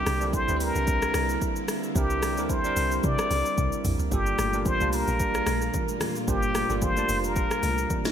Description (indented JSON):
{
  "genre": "amapiano",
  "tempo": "111 BPM",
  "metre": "4/4",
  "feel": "swing 55% on 16ths",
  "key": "G dorian",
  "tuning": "A4 = 440 Hz",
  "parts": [
    { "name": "trumpet with plunger mute", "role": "melody", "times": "0.0-8.1 s", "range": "G4 to D5", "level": "-28 LUFS", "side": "left 2 dB", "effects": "ping-pong delay" },
    { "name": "bell-like tine electric piano", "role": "accompaniment", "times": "0.0-8.1 s", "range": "G3 to A5", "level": "-31 LUFS", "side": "right 6 dB", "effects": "wide subtle chorus" },
    { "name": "string machine, violas", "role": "sustained chords", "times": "0.0-8.1 s", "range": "Bb2 to F4", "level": "-35 LUFS", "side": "left 1 dB", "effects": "ensemble chorus, sidechain pumping" },
    { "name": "deep log drum bass", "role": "bass", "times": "0.0-7.9 s", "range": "F1 to C3", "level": "-30 LUFS", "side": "equal", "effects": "none" },
    { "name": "afro-pop drum kit", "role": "drums", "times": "0.1-8.1 s", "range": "hi-hat, kick drum, rim click, shaker, snare drum, toms", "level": "-29 LUFS", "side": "equal", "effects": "overdrive, gated reverb" },
    { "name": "congas", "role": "percussion", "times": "4.4-8.1 s", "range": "none", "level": "-37 LUFS", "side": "left 4 dB", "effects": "none" }
  ],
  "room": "moderate plate reverb, RT60 2.6 s",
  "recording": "bright 1980s-style digital production",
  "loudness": "-23 LUFS",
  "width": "side -9 dB against mid",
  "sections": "0.0-8.1 A section",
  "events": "drum fill 3.6-4.1",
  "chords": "0.0 C9; 4.1 Gm9"
}